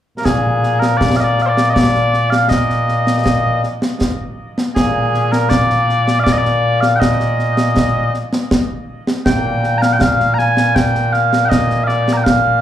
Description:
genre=scottish traditional, Scottish pipe music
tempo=80 BPM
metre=3/4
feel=straight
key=Bb mixolydian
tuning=A4 = 442 Hz
part: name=mellow small bagpipes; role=melody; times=0.2-12.6 s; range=Bb2 to Bb5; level=-14 LUFS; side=equal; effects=slapback echo, tape echo
part: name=concert snare drum and concert bass drum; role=drums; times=0.3-12.4 s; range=none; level=-18 LUFS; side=equal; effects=none
room=moderate club reverb, RT60 0.7 s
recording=live gig heard through the venue's PA, club reverb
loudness=-13 LUFS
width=side -10 dB against mid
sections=0.3-12.6 A section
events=none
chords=none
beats=| 0.26 1.01 1.76 | 2.51 3.26 4.01 | 4.76 5.51 6.26 | 7.01 7.76 8.51 | 9.26 10.01 10.76 | 11.51 12.26

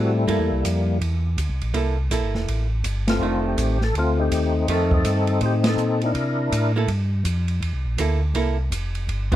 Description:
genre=soul jazz organ trio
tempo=164 BPM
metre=4/4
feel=swing 64% on 8ths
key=C mixolydian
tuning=A4 = 440 Hz
part: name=percussive tonewheel organ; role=melody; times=0.0-6.7, 9.3-9.4 s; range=G3 to Bb4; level=-23 LUFS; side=left 4 dB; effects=slow rotary speaker, overdrive, chorus vibrato
part: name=archtop guitar, miked and amplified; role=accompaniment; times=0.0-9.4 s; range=Eb3 to A4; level=-27 LUFS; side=right 6 dB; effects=none
part: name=mellow tonewheel organ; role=bass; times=0.0-9.4 s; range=E1 to C3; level=-22 LUFS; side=equal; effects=slow rotary speaker
part: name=open jazz drum kit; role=drums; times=0.3-9.4 s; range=crash cymbal, hi-hat, kick drum, ride cymbal, snare drum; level=-29 LUFS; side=right 1 dB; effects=none
room=light reverb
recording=close, detailed microphones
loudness=-20 LUFS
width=side -13 dB against mid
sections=0.0-9.4 A section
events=band accent 3.0, 5.6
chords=0.0 C13; 3.2 F13; 6.2 C13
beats=| 0.28 0.65 1.01 1.38 | 1.75 2.11 2.48 2.85 | 3.21 3.58 3.95 4.32 | 4.68 5.05 5.42 5.78 | 6.15 6.52 6.88 7.25 | 7.62 7.99 8.35 8.72 | 9.09

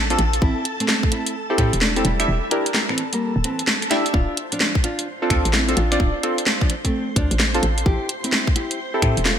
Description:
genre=UK garage, two-step garage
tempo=129 BPM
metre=4/4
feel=swing 64% on 16ths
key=D minor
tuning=A4 = 440 Hz
part: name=soft string machine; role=sustained chords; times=0.0-9.4 s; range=A4 to C6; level=-31 LUFS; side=equal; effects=ensemble chorus, sidechain pumping
part: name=hollow knocking FM bass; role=bass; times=0.0-9.4 s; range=D1 to A2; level=-22 LUFS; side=equal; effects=sidechain pumping
part: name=deep mellow chord stab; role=stabs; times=0.1-9.2 s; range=C4 to E5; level=-23 LUFS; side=equal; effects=chorus, digital delay
part: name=garage drum kit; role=drums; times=0.1-9.4 s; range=finger snaps, hi-hat, snare drum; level=-22 LUFS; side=equal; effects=gated reverb
part: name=nylon-string guitar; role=melody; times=0.4-9.4 s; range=E3 to G4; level=-27 LUFS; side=equal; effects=vintage 12-bit sampler grit, digital delay
part: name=electronic kick drum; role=drums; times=0.4-9.1 s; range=none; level=-20 LUFS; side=equal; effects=none
room=light reverb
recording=bright 1980s-style digital production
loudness=-18 LUFS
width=side -9 dB against mid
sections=0.0-9.4 A section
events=kick drops out 2.3-4.1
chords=0.4 Am7; 2.0 Em7b5; 4.1 Dm7; 7.9 Am7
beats=| 0.42 0.88 1.35 1.81 | 2.28 2.75 3.21 3.67 | 4.14 4.61 5.07 5.54 | 6.00 6.47 6.93 7.40 | 7.86 8.33 8.79 9.26

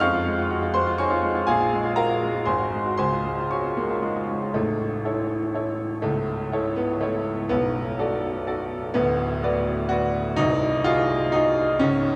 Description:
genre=classical, virtuoso piano study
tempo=123 BPM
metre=3/4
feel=rubato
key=Db major, A major from 4.6 s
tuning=A4 = 440 Hz
part: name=bright grand piano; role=solo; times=0.0-12.2 s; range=A0 to F6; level=-24 LUFS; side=equal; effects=none
room=wet cathedral reverb, RT60 6.8 s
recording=recorded in a church or concert hall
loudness=-24 LUFS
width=mono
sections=0.0-4.6 A section; 4.6-12.2 B section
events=none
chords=0.0 Db/F; 1.5 Bb5; 2.5 Ab7; 3.0 Db; 4.6 A; 6.0 A/C#; 7.5 Bm7; 9.0 Bm/D; 10.4 Ab7/C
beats=| 0.01 0.50 0.99 | 1.48 1.97 2.47 | 2.99 3.52 4.05 | 4.57 5.06 5.55 | 6.04 6.54 7.02 | 7.50 7.99 8.47 | 8.95 9.43 9.90 | 10.38 10.86 11.34 | 11.81

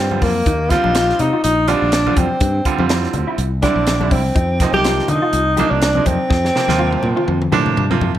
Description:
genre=electric jazz fusion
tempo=123 BPM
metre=4/4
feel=swing 55% on 16ths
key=unclear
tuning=A4 = 440 Hz
part: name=breathy tenor saxophone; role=melody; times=0.0-7.8 s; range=Bb3 to G4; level=-18 LUFS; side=equal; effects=none
part: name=bright grand piano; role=accompaniment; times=0.0-8.2 s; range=C3 to G4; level=-21 LUFS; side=right 8 dB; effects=none
part: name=fretless electric bass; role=bass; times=0.0-8.2 s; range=Bb1 to D3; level=-20 LUFS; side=equal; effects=none
part: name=congas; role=percussion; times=0.1-8.1 s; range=none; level=-26 LUFS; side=left 6 dB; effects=none
part: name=crisp fusion drum kit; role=drums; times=0.2-8.2 s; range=hi-hat, kick drum, snare drum, toms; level=-20 LUFS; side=equal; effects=none
part: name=mellow electric guitar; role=stabs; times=0.5-8.1 s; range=C4 to G4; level=-26 LUFS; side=left 1 dB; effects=ensemble chorus
room=moderate studio reverb, RT60 0.8 s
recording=none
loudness=-14 LUFS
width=side -12 dB against mid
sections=0.0-8.2 A section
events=drum fill 6.3-8.2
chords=0.5 Ebmaj9; 2.4 G5; 3.4 C9; 4.4 F9sus4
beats=| 0.47 0.95 1.44 1.92 | 2.41 2.90 3.38 3.87 | 4.36 4.85 5.33 5.82 | 6.31 6.80 7.28 7.77

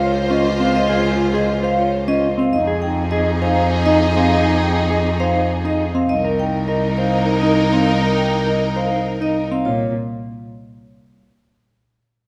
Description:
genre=classical, minimalist pattern music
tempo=101 BPM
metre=3/4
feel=straight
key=Bb dorian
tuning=A4 = 440 Hz
part: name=vibraphone with medium hard mallets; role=melody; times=0.0-9.9 s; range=C5 to Ab5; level=-24 LUFS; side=equal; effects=none
part: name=bright wooden-headed alto flute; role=second line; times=0.0-9.4 s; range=Eb4 to F4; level=-28 LUFS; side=equal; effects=none
part: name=rich symphonic violin section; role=sustained chords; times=0.0-9.5 s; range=Eb4 to C5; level=-25 LUFS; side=equal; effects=none
part: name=mellow electric guitar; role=arpeggios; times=0.0-9.9 s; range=C4 to C5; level=-25 LUFS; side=equal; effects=none
part: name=rich cello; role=bass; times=0.0-9.9 s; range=C2 to Bb2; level=-23 LUFS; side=equal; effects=none
room=wet recital hall reverb, RT60 1.8 s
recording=recorded in a church or concert hall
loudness=-18 LUFS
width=mono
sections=0.0-9.7 A section; 9.7-11.4 B section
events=none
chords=0.0 Dbmaj7; 2.5 Fm7; 6.1 Cm7; 9.7 Bb5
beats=0.15 | 0.74 1.34 1.93 | 2.52 3.12 3.71 | 4.31 4.90 5.50 | 6.09 6.68 7.28 | 7.87 8.46 9.06 | 9.65

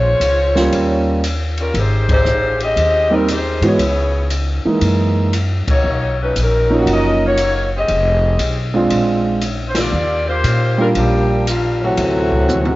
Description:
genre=jazz, big band swing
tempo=117 BPM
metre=4/4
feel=swing 67% on 8ths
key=unclear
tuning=A4 = 442 Hz
part: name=bright saxophone section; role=melody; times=0.0-12.8 s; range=D#3 to D#5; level=-18 LUFS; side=left 1 dB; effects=cassette tape
part: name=upright bass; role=bass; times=0.0-12.8 s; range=F1 to Bb2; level=-19 LUFS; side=equal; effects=none
part: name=open jazz drum kit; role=drums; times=0.2-12.8 s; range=hi-hat, kick drum, ride cymbal, snare drum, toms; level=-23 LUFS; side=left 1 dB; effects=cassette tape
part: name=warm grand piano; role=accompaniment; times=0.6-11.4 s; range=Fb3 to Gb4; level=-17 LUFS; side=right 2 dB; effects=cassette tape
part: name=bright trombone section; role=second line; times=11.8-12.8 s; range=A2 to Gb3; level=-18 LUFS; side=right 1 dB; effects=cassette tape
room=light reverb, studio reverb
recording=home recording on cassette, nothing above 7.6 kHz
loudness=-14 LUFS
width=side -18 dB against mid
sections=0.0-12.8 A section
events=band accent 2.0, 5.6, 9.7; drum fill 12.5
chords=0.0 Bbm9; 0.7 Eb13; 1.7 Abmaj7; 3.8 Dbm9; 4.8 Gb13; 5.8 Bmaj9#11; 7.9 Fm9; 8.9 Bb9; 9.9 Ebmaj9; 12.0 D9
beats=0.21 0.72 1.23 | 1.74 2.26 2.77 3.28 | 3.79 4.30 4.82 5.33 | 5.84 6.35 6.86 7.38 | 7.89 8.40 8.91 9.43 | 9.94 10.45 10.96 11.47 | 11.98 12.50

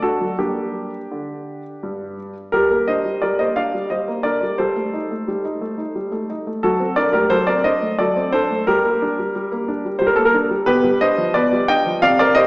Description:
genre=classical-period piano sonatina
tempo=88 BPM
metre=3/4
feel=rubato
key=G minor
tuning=A4 = 441 Hz
part: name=clear grand piano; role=solo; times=0.0-12.5 s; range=G2 to G5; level=-16 LUFS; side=equal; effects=none
room=wet recital hall reverb, RT60 1.8 s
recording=heard from further back in the room, small speaker sound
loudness=-16 LUFS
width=side -24 dB against mid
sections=0.0-2.5 A section; 2.5-12.5 A section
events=none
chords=0.4 Gm; 4.6 Am7b5/G; 6.6 D7/F#; 8.7 Gm; 10.7 G7/B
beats=| 0.39 1.11 1.82 | 2.53 3.22 3.90 | 4.58 5.27 5.95 | 6.63 7.30 7.98 | 8.66 9.34 10.01 | 10.67 11.35 12.02

